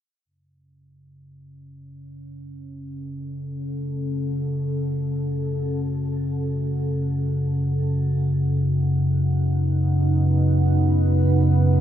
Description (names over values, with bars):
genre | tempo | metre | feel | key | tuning
dark ambient drone | free time | none | none | F# dorian | A4 = 438 Hz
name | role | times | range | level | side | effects
deep dark ambient pad | sustained chords | 2.2-11.8 s | C#4 to F#5 | -30 LUFS | right 1 dB | chorus, built-in reverb, shimmer reverb
deep rumbling drone | drone | 1.6-11.8 s | F#2 to C#3 | -21 LUFS | equal | built-in reverb
room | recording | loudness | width
light reverb, digital ambience | none | -20 LUFS | side -10 dB against mid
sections
0.3-11.8 A section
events
fade-in on ambient pad 0.3-11.8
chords
0.3 F#m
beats
free time